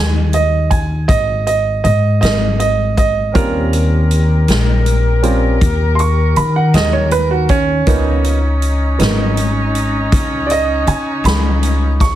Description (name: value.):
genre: slow blues.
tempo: 53 BPM (dotted quarters).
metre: 12/8.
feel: straight.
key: Ab major.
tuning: A4 = 441 Hz.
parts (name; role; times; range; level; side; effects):
bright upright piano; accompaniment; 0.0-12.2 s; F3 to Db6; -18 LUFS; right 5 dB; none.
upright bass; bass; 0.0-12.2 s; Ab1 to Eb3; -15 LUFS; left 1 dB; none.
swinging big-band drum kit; drums; 0.3-12.2 s; hi-hat, kick drum, snare drum; -18 LUFS; left 1 dB; none.
mellow saxophone section; sustained chords; 3.3-12.2 s; Db4 to Bb4; -21 LUFS; left 2 dB; none.
room: light reverb.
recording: heavily compressed radio sound.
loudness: -12 LUFS.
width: side -12 dB against mid.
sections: 0.0-12.2 A section.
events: upright piano solo 0.0-12.2.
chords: 0.0 Ab5; 3.3 Eb13; 7.9 Db13.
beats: 1.08 2.22 | 3.35 4.48 5.61 6.74 | 7.87 9.00 10.12 11.25.